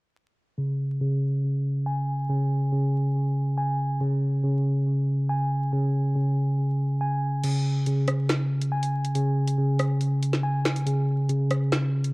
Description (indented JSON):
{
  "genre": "hip hop, drill",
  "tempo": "140 BPM",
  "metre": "4/4",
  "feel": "half-time",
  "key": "unclear",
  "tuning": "A4 = 438 Hz",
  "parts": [
    { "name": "mellow tine electric piano", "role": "arpeggios", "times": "0.6-12.1 s", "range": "C#3 to G#5", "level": "-23 LUFS", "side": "equal", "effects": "medium stereo tremolo, low-pass filter, analog delay" },
    { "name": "drill drum kit", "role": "drums", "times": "7.4-12.1 s", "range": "crash cymbal, finger snaps, hi-hat, rim click, snare drum", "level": "-29 LUFS", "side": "equal", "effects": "cassette tape" }
  ],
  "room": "little or no reverb",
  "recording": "home recording on cassette, vinyl crackle",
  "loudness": "-23 LUFS",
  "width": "side -25 dB against mid",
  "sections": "0.6-7.4 A section; 7.4-12.1 B section",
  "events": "filter sweep on tine electric piano 0.6-7.4; kick muted 7.4-12.1",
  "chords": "0.6 C#5"
}